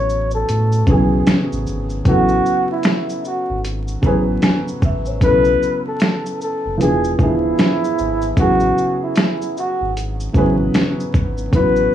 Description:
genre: lo-fi hip hop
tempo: 76 BPM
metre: 4/4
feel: swing 60% on 16ths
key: A major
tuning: A4 = 440 Hz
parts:
  - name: breathy flugelhorn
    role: melody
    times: 0.0-11.9 s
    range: E4 to C#5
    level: -19 LUFS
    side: equal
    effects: low-pass filter, plate reverb
  - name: dark upright piano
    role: accompaniment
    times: 0.0-11.9 s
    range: C#3 to G#5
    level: -20 LUFS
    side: equal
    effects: cassette tape, low-pass filter, plate reverb
  - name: sub bass with octave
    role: bass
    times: 0.0-11.9 s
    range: D1 to A2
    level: -22 LUFS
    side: equal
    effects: none
  - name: dusty soul sampler-style drum kit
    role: drums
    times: 0.1-11.9 s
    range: finger snaps, hi-hat, kick drum, shaker, snare drum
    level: -17 LUFS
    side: equal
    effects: none
room: moderate small room reverb, RT60 0.5 s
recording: vinyl crackle, small room ambience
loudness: -15 LUFS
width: side -11 dB against mid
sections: 0.0-2.1 A section; 2.1-11.9 B section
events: none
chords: 0.0 Amaj9; 5.2 Bsus2; 6.8 E7b9; 8.4 Amaj9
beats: 0.48 1.27 | 2.06 2.85 3.64 4.43 | 5.22 6.01 6.80 7.58 | 8.38 9.16 9.95 10.74 | 11.53

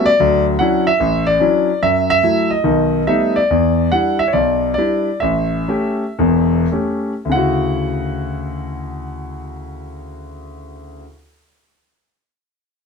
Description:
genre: solo jazz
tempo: 100-149 BPM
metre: 4/4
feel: swing 66% on 8ths, rubato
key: D major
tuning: A4 = 440 Hz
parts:
  - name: warm concert grand piano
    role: solo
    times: 0.0-11.1 s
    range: E1 to F#5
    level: -15 LUFS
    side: left 1 dB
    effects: none
room: moderate studio reverb, RT60 0.6 s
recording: none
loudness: -14 LUFS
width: side -5 dB against mid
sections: 0.0-3.5 A section; 3.5-7.3 B section; 7.3-12.0 C section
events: slowing down 3.5-7.3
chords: 0.2 Dmaj9; 1.8 F#m7; 2.6 B7b13; 3.5 Em7; 5.2 A7; 7.3 Dmaj9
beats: | 0.19 0.59 1.00 1.41 | 1.82 2.23 2.65 3.08 | 3.51 3.93 4.34 4.77 | 5.21 5.68 6.18 6.72 | 7.30 7.89 8.48 9.07 | 9.66 10.24 10.83

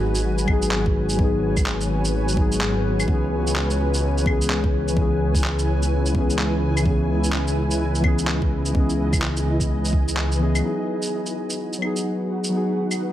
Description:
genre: future garage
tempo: 127 BPM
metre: 4/4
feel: swing 61% on 16ths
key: C# minor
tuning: A4 = 440 Hz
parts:
  - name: muted felt-like synth keys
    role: accompaniment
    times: 0.0-13.1 s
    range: E3 to G#4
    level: -25 LUFS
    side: left 2 dB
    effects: chorus, sidechain pumping, dub echo
  - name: granular cloud pad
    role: sustained chords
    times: 0.0-13.1 s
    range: D#4 to G#5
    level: -28 LUFS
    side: equal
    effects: built-in reverb, sidechain pumping
  - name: swelling detuned saw bass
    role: bass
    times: 0.0-10.6 s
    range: G#1 to C#2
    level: -23 LUFS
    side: equal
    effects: sidechain pumping
  - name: electronic shaker, claves and handclaps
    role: drums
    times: 0.1-13.0 s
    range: none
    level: -28 LUFS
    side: equal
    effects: small room reverb
  - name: electronic kick drum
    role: drums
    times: 0.5-10.0 s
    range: none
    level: -22 LUFS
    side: equal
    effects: overdrive, small room reverb
room: light reverb, digital ambience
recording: none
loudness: -19 LUFS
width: side -12 dB against mid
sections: 0.0-10.6 A section; 10.6-13.1 B section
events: none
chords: 0.0 G#m7; 3.1 C#m7; 10.6 G#m7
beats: 0.25 0.72 | 1.19 1.67 2.14 2.61 | 3.08 3.56 4.03 4.50 | 4.97 5.45 5.92 6.39 | 6.86 7.33 7.81 8.28 | 8.75 9.22 9.70 10.17 | 10.64 11.11 11.59 12.06 | 12.53 13.00

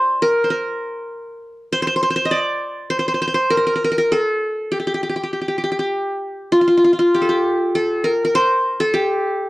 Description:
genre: turkish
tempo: 100 BPM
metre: 4/4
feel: straight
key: G makam ussak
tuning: A4 = 440 Hz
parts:
  - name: qanun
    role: solo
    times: 0.0-9.5 s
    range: F4 to Eb5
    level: -16 LUFS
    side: equal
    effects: none
room: light reverb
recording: worn, warbling old tape, cassette tape, warbly pitch drift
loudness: -16 LUFS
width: side -19 dB against mid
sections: 0.0-9.5 A section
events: none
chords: none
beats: 0.51 1.11 | 1.71 2.31 2.92 3.52 | 4.12 4.72 5.32 5.92 | 6.52 7.12 7.72 8.32 | 8.92

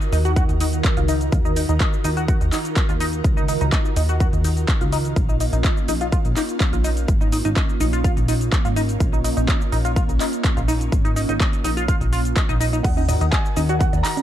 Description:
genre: progressive house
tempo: 125 BPM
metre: 4/4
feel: straight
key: Eb minor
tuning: A4 = 444 Hz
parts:
  - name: airy breathy pad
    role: sustained chords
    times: 0.0-14.2 s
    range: Eb3 to Bb4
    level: -28 LUFS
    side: right 1 dB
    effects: chorus, phaser, sidechain pumping
  - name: big-room dance drum kit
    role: drums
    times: 0.0-14.2 s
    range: crash cymbal, handclaps, hi-hat, shaker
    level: -29 LUFS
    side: equal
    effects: overdrive, sidechain pumping on hats, sidechain pumping on perc, sidechain pumping on cymbals
  - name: tight sequenced synth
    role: arpeggios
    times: 0.1-14.1 s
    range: Eb4 to Eb5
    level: -26 LUFS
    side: equal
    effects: chorus, phaser, cassette tape, sidechain pumping, digital delay
  - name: plucky analog bass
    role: bass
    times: 0.1-14.0 s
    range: Ab1 to Eb2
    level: -22 LUFS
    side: equal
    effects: sidechain pumping
  - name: electronic kick drum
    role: drums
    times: 0.4-13.9 s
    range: none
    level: -20 LUFS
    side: equal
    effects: overdrive
  - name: dark concert grand piano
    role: melody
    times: 12.8-14.2 s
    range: Gb5 to Bb5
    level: -27 LUFS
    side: right 2 dB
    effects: digital delay
  - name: electronic bongos, congas and toms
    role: percussion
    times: 12.8-14.2 s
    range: none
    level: -28 LUFS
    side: right 4 dB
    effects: sidechain pumping on perc, sidechain pumping on toms
room: little or no reverb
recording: dark, warm production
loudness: -17 LUFS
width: side -11 dB against mid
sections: 0.0-14.2 A section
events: none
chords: 0.0 Ebmadd9; 5.2 Bbm; 12.8 Ebm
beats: 0.36 0.84 | 1.32 1.80 2.29 2.77 | 3.25 3.73 4.21 4.68 | 5.17 5.64 6.12 6.61 | 7.08 7.57 8.04 8.53 | 9.01 9.48 9.96 10.45 | 10.93 11.40 11.88 12.37 | 12.85 13.32 13.80

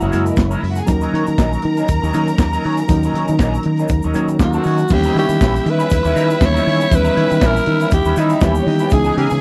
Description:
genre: disco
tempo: 119 BPM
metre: 4/4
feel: swing 56% on 16ths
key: unclear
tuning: A4 = 441 Hz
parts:
  - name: raspy alto saxophone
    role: melody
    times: 0.0-0.6, 4.4-9.4 s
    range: D#4 to C#5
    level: -21 LUFS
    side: equal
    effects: none
  - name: clear studio string section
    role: second line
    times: 0.0-9.4 s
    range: A#3 to A#5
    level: -27 LUFS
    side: equal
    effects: none
  - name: electric guitar through a small old amp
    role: accompaniment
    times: 0.0-9.3 s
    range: E3 to C#5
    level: -28 LUFS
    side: equal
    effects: wah
  - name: mellow reed electric piano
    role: accompaniment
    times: 0.0-9.4 s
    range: C#3 to E4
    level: -23 LUFS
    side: equal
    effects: fast tremolo
  - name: fingered electric bass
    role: bass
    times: 0.0-9.4 s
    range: F#1 to D#3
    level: -21 LUFS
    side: equal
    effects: none
  - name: tube shaker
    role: percussion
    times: 0.0-9.4 s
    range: none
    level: -43 LUFS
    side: equal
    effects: none
  - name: tight funk drum kit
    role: drums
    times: 0.1-9.4 s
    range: crash cymbal, handclaps, hi-hat, kick drum, snare drum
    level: -20 LUFS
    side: equal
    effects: none
room: little or no reverb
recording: dry, close 1970s-style studio recording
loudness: -16 LUFS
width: mono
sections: 0.0-4.9 A section; 4.9-9.4 B section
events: none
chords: 0.0 F#9; 0.9 D#m7; 4.9 D#7b9b13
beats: 0.38 | 0.88 1.38 1.89 2.39 | 2.89 3.40 3.90 4.40 | 4.91 5.41 5.91 6.41 | 6.91 7.42 7.92 8.42 | 8.92

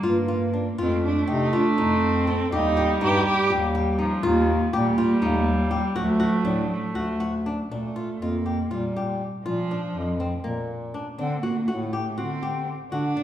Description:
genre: contemporary instrumental, chamber music in an uneven meter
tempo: 242 BPM (eighths)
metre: 7/8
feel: straight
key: unclear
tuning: A4 = 439 Hz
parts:
  - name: dark cello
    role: melody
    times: 0.0-13.2 s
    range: F3 to G4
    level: -26 LUFS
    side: right 3 dB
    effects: none
  - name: warm viola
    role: second line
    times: 0.0-7.4 s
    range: Eb3 to Bb3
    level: -26 LUFS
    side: right 2 dB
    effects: none
  - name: flamenco guitar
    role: arpeggios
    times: 0.0-13.2 s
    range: Bb3 to A4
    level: -28 LUFS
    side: left 2 dB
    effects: none
  - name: warm bass clarinet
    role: bass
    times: 0.0-13.1 s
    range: D2 to D3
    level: -27 LUFS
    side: left 1 dB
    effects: none
room: wet recital hall reverb, RT60 1.6 s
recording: recorded in a church or concert hall, faint mains hum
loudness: -22 LUFS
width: side -11 dB against mid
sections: 0.0-7.7 A section; 7.7-13.2 B section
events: none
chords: 0.0 Gm7; 0.8 F7; 2.5 Eb; 6.0 D; 7.7 Bb; 11.2 D7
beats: 0.04 0.29 0.54 | 0.79 1.04 1.29 1.54 1.79 2.04 2.28 | 2.53 2.77 3.02 3.27 3.51 3.76 4.00 | 4.25 4.49 4.74 4.98 5.23 5.47 5.71 | 5.96 6.21 6.45 6.70 6.95 7.21 7.46 | 7.71 7.96 8.21 8.46 8.71 8.96 9.20 | 9.45 9.70 9.94 10.19 10.44 10.69 10.94 | 11.18 11.43 11.68 11.93 12.18 12.42 12.67 | 12.92 13.17

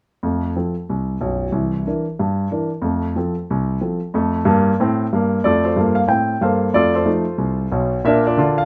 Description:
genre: jazz, stride piano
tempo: 184 BPM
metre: 4/4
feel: swing 60% on 8ths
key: F major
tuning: A4 = 440 Hz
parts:
  - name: warm concert grand piano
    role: solo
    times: 0.2-8.7 s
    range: B0 to G5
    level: -19 LUFS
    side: equal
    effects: none
room: moderate club reverb, RT60 0.6 s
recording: none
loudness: -19 LUFS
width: mono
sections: 0.2-5.4 A section; 5.4-8.7 B section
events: none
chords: 0.2 F; 1.5 C9; 2.8 F; 6.7 F7; 8.0 Bb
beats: | 0.22 0.55 0.87 1.20 | 1.52 1.85 2.18 2.50 | 2.83 3.15 3.48 3.81 | 4.13 4.46 4.78 5.11 | 5.44 5.76 6.09 6.41 | 6.74 7.07 7.39 7.72 | 8.04 8.37

